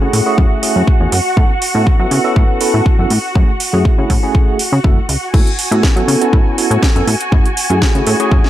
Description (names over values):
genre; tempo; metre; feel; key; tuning
filtered disco house; 121 BPM; 4/4; straight; A major; A4 = 440 Hz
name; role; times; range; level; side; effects
tine electric piano; accompaniment; 0.0-8.5 s; A3 to A4; -18 LUFS; right 1 dB; medium stereo tremolo, phaser, sidechain pumping, low-pass filter
rich studio string section; sustained chords; 0.0-8.5 s; F#4 to G#5; -20 LUFS; equal; sidechain pumping, low-pass filter
plucky analog bass; bass; 0.0-8.4 s; F#1 to F#3; -15 LUFS; equal; sidechain pumping, low-pass filter
egg shaker; percussion; 0.0-8.5 s; none; barely audible; none; none
house drum kit; drums; 0.1-8.5 s; crash cymbal, hi-hat, snare drum; -20 LUFS; right 2 dB; sidechain pumping on hats, sidechain pumping on cymbals
electronic kick drum; drums; 0.4-8.4 s; none; -12 LUFS; equal; none
room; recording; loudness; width
digital ambience; none; -11 LUFS; side -13 dB against mid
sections
0.0-8.5 A section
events
none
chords
0.0 F#m9; 1.4 A69; 3.4 F#m9; 5.3 A69; 7.3 F#m9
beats
0.38 0.88 | 1.37 1.87 2.36 2.86 | 3.36 3.85 4.35 4.84 | 5.34 5.83 6.33 6.83 | 7.32 7.82 8.31